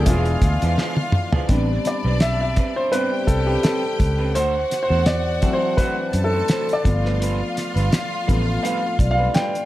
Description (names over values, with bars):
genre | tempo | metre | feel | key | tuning
lush 1970s-style soul | 84 BPM | 4/4 | swing 54% on 16ths | unclear | A4 = 444 Hz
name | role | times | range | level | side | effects
warm flugelhorn | melody | 0.0-0.8 s | G#4 | -31 LUFS | right 1 dB | none
warm studio string section | second line | 0.0-9.7 s | D4 to A5 | -29 LUFS | left 2 dB | none
warm baby grand piano | accompaniment | 0.0-9.7 s | E3 to G5 | -22 LUFS | left 1 dB | none
vintage muted fingered electric bass | bass | 0.0-9.3 s | E1 to F#2 | -21 LUFS | equal | none
electric guitar through a small old amp | riff | 0.1-9.5 s | F3 to C5 | -30 LUFS | right 5 dB | none
cloth-damped thuddy drum kit | drums | 0.1-9.7 s | hi-hat, kick drum, snare drum, toms | -20 LUFS | equal | none
vibraphone with medium mallets | texture | 1.8-9.7 s | D5 to B5 | -34 LUFS | left 3 dB | none
room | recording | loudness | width
light reverb, studio reverb | none | -18 LUFS | side -15 dB against mid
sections
0.0-1.5 A section; 1.5-9.7 B section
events
drum fill 0.8-1.5; grand piano solo 1.5-9.7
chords
0.1 E7b9; 1.5 Am11; 4.3 D7; 6.8 G7